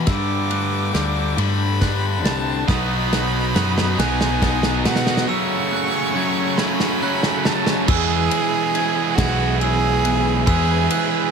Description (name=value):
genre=post-rock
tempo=46 BPM (dotted quarters)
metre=6/8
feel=straight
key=unclear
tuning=A4 = 441 Hz
part: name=clear violin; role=melody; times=0.0-11.3 s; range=F#4 to D6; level=-25 LUFS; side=right 2 dB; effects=analog delay
part: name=clear studio string section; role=sustained chords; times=0.0-11.3 s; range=C#4 to B5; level=-35 LUFS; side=left 2 dB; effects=none
part: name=clean electric guitar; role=arpeggios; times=0.0-11.3 s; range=B2 to G#4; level=-29 LUFS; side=left 4 dB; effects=spring reverb, analog delay
part: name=glockenspiel with hard plastic mallets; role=arpeggios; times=0.0-11.3 s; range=D#6 to A6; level=-31 LUFS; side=right 6 dB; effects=analog delay
part: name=tight distorted guitar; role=riff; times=0.0-7.9 s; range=F#2 to B3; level=-25 LUFS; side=left 14 dB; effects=distortion
part: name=fuzz fingered electric bass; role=bass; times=0.0-10.9 s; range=B1 to B2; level=-22 LUFS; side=equal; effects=overdrive
part: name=loose indie drum kit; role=drums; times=0.1-11.1 s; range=crash cymbal, kick drum, ride cymbal, snare drum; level=-23 LUFS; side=equal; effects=none
part: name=tight distorted guitar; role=riff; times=2.7-11.3 s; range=F#2 to E4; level=-23 LUFS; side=right 14 dB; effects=distortion
room=small room ambience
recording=none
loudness=-17 LUFS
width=side -6 dB against mid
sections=0.0-7.9 A section; 7.9-11.3 B section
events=build-up 0.0-7.9; drum fill 0.0-5.3, 6.6-7.9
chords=0.1 Gsus2; 2.7 B; 5.3 F#m; 7.9 E